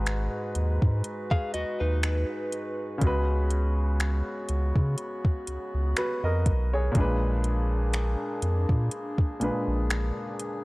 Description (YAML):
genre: contemporary R&B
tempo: 61 BPM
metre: 4/4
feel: swing 54% on 16ths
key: unclear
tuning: A4 = 440 Hz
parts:
  - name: clear grand piano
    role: accompaniment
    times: 0.0-10.6 s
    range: G#2 to D#5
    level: -32 LUFS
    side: equal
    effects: none
  - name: warm woodwind section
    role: sustained chords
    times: 0.0-10.6 s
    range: C#3 to B4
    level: -35 LUFS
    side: equal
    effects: sidechain pumping
  - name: saturated sub bass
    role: bass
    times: 0.0-10.1 s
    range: G#1 to C#3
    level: -26 LUFS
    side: equal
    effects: none
  - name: smooth R&B drum kit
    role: drums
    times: 0.1-10.6 s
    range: finger snaps, hi-hat, kick drum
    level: -26 LUFS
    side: equal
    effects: none
  - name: direct-recorded clean electric guitar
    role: arpeggios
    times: 1.3-3.0 s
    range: D#4 to E#5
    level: -32 LUFS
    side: left 1 dB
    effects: tape echo
room: digital ambience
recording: dry, gritty hardware recording, cassette tape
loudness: -25 LUFS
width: side -22 dB against mid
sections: 0.0-10.6 A section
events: none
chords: 0.0 G#m7; 3.0 C#7sus4; 6.9 A#7b9